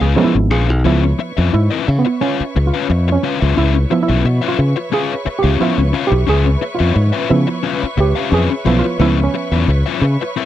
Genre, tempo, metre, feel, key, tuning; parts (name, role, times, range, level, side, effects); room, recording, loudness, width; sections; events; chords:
funk; 88 BPM; 4/4; straight; A4 = 440 Hz
overdriven electric guitar; accompaniment; 0.0-10.5 s; Db4 to F5; -19 LUFS; left 10 dB
muted clav; stabs; 0.0-10.5 s; F3 to Bb4; -18 LUFS; right 4 dB; auto-wah
modern bright fingered electric bass; bass; 0.0-10.2 s; Ab1 to Db3; -14 LUFS; equal
warm symphonic string section; sustained chords; 0.8-10.5 s; Cb5 to Db6; -26 LUFS; equal
little or no reverb; dry, close 1970s-style studio recording; -13 LUFS; side -12 dB against mid
0.9-10.5 A section
clav fill 0.0-0.9; clav solo 0.9-10.5
0.0 Db7#9